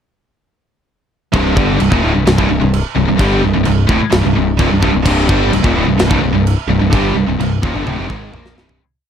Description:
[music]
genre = heavy metal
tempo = 129 BPM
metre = 4/4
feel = straight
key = C minor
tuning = A4 = 439 Hz
[part]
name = biting overdriven guitar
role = riff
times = 1.3-8.8 s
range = C2 to Bb3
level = -18 LUFS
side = equal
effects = none
[part]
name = high-gain distorted guitar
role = riff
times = 1.3-8.8 s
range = C2 to Bb3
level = -19 LUFS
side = right 10 dB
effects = distortion
[part]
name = scooped high-gain guitar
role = riff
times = 1.3-8.8 s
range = C2 to Bb3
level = -18 LUFS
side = left 8 dB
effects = distortion
[part]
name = growling picked electric bass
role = bass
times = 1.3-8.8 s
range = C1 to Bb1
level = -18 LUFS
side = equal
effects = overdrive
[part]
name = tight metal drum kit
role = drums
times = 1.3-8.8 s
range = china cymbal, crash cymbal, kick drum, snare drum, toms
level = -18 LUFS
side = equal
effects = none
[sound]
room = little or no reverb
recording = dark, warm production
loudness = -11 LUFS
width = side -8 dB against mid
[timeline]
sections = 1.3-8.8 riff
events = fade-out 6.9-8.8; drum fill 7.9-8.8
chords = 1.3 Cm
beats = | 1.32 1.79 2.25 2.72 | 3.19 3.65 4.12 4.58 | 5.05 5.52 5.98 6.45 | 6.92 7.39 7.86 8.32

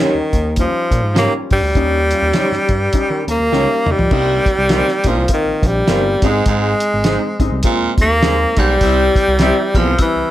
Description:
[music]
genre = uptempo 1960s-style soul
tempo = 102 BPM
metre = 4/4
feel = swing 59% on 8ths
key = unclear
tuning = A4 = 436 Hz
[part]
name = breathy tenor saxophone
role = melody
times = 0.0-10.3 s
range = Eb3 to Bb3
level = -16 LUFS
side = equal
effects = plate reverb
[part]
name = clear upright piano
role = accompaniment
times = 0.0-10.3 s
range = G3 to Bb5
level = -23 LUFS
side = left 5 dB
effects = none
[part]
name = electric guitar through a small old amp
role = stabs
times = 0.0-9.5 s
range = Eb4 to E5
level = -21 LUFS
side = right 4 dB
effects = none
[part]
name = smooth synth bass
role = bass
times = 0.1-10.2 s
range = G1 to Eb3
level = -20 LUFS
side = equal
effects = none
[part]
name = cloth-damped thuddy drum kit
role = drums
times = 0.3-10.1 s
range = crash cymbal, hi-hat, kick drum, snare drum, toms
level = -17 LUFS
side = equal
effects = none
[part]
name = breathy baritone saxophone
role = riff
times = 4.1-9.9 s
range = E2 to C3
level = -21 LUFS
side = right 5 dB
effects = none
[part]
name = glockenspiel with hard plastic mallets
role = second line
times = 8.0-10.3 s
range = E6 to Bb6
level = -23 LUFS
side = left 1 dB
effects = none
[sound]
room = moderate club reverb, RT60 0.5 s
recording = none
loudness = -13 LUFS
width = side -14 dB against mid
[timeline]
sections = 0.0-4.1 A section; 4.1-10.3 B section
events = upright piano fill 2.9-4.1; drum fill 3.5-4.1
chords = 0.0 Eb7; 4.1 Cm7; 6.2 Ab; 8.8 C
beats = 0.58 1.17 | 1.76 2.35 2.94 3.52 | 4.11 4.70 5.29 5.88 | 6.46 7.05 7.64 8.23 | 8.81 9.40 9.99

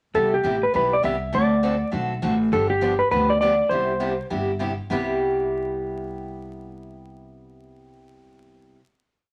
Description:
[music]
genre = country, western swing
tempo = 202 BPM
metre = 4/4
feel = swing 63% on 8ths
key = C major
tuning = A4 = 440 Hz
[part]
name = clean lap steel guitar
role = melody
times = 0.1-4.3 s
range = G4 to E5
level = -23 LUFS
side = equal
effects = none
[part]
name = picked steel-string acoustic guitar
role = accompaniment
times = 0.1-8.8 s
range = C3 to A4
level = -29 LUFS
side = equal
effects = none
[part]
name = upright bass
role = bass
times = 0.1-8.7 s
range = G1 to D2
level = -29 LUFS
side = equal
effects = none
[sound]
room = moderate studio reverb, RT60 0.7 s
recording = vinyl crackle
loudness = -22 LUFS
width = mono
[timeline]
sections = 0.1-4.9 A section; 4.9-7.3 final chord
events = none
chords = 0.1 Cmaj7; 1.3 D7; 2.5 G7; 3.7 Cmaj7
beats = | 0.14 0.44 0.74 1.04 | 1.33 1.63 1.93 2.23 | 2.52 2.82 3.12 3.41 | 3.71 4.01 4.30 4.60 | 4.90 5.20 5.49 5.79 | 6.09 6.39 6.69 6.99

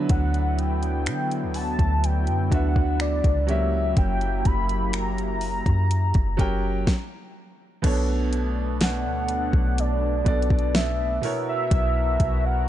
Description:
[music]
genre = contemporary R&B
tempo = 62 BPM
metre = 4/4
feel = straight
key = B minor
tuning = A4 = 440 Hz
[part]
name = warm baby grand piano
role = accompaniment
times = 0.0-12.7 s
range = B2 to G5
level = -30 LUFS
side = right 4 dB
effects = none
[part]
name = lush unison pad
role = sustained chords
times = 0.0-12.7 s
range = D3 to A#4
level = -32 LUFS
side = equal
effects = chorus, sidechain pumping
[part]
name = soft 808-style bass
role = bass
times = 0.0-12.7 s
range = F#1 to D3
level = -24 LUFS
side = equal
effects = none
[part]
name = warm velvety synth lead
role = melody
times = 0.1-12.7 s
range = D5 to B5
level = -28 LUFS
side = left 1 dB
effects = chorus, ping-pong delay
[part]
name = smooth R&B drum kit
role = drums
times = 0.1-12.4 s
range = crash cymbal, finger snaps, hi-hat, kick drum, snare drum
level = -23 LUFS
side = equal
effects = vintage 12-bit sampler grit
[sound]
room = little or no reverb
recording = dark, warm production, nothing above 10.4 kHz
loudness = -21 LUFS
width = side -12 dB against mid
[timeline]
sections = 0.0-7.8 A section; 7.8-12.7 B section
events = stop 6.9-7.8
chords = 0.0 D69; 3.5 F#7b9; 7.8 Bm7; 11.2 F#7/B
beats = | 0.10 1.07 2.04 3.00 | 3.97 4.94 5.91 6.87 | 7.84 8.81 9.78 10.74 | 11.71 12.68

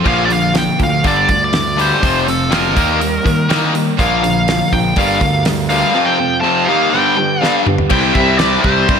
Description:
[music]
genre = classic rock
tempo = 123 BPM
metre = 4/4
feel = straight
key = G minor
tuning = A4 = 440 Hz
[part]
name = overdriven semi-hollow guitar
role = riff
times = 0.0-9.0 s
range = F2 to E4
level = -18 LUFS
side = left 10 dB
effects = none
[part]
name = tight distorted guitar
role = riff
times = 0.0-9.0 s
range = G2 to F4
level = -20 LUFS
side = right 11 dB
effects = distortion, slapback echo
[part]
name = fuzz fingered electric bass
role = bass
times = 0.0-9.0 s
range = F1 to Eb3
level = -20 LUFS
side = right 1 dB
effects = overdrive
[part]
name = nasal lead guitar with a parked wah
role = melody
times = 0.1-9.0 s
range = A4 to A5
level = -16 LUFS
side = equal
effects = overdrive, slapback echo
[part]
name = damped 70s drum kit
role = drums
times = 0.1-9.0 s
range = crash cymbal, hi-hat, kick drum, snare drum, toms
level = -19 LUFS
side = right 1 dB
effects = none
[part]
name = picked acoustic archtop guitar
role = accompaniment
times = 4.0-9.0 s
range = G2 to Bb4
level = -23 LUFS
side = right 7 dB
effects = none
[part]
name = overdriven electric guitar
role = riff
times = 7.9-9.0 s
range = C3 to E4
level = -19 LUFS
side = equal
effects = none
[sound]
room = moderate lush hall reverb, RT60 1.8 s, studio ambience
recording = big arena sound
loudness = -12 LUFS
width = side -7 dB against mid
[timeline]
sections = 0.1-7.9 A section; 7.9-9.0 B section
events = drum fill 7.4-7.9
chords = 0.1 Bb; 1.0 G5; 2.0 F5; 2.8 Eb; 4.0 Bb; 5.0 Gm; 5.9 F; 6.7 Eb; 6.9 G7; 7.9 C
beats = | 0.06 0.56 1.05 1.54 | 2.03 2.52 3.01 3.50 | 3.99 4.48 4.97 5.46 | 5.95 6.44 6.93 7.41 | 7.90 8.39 8.88

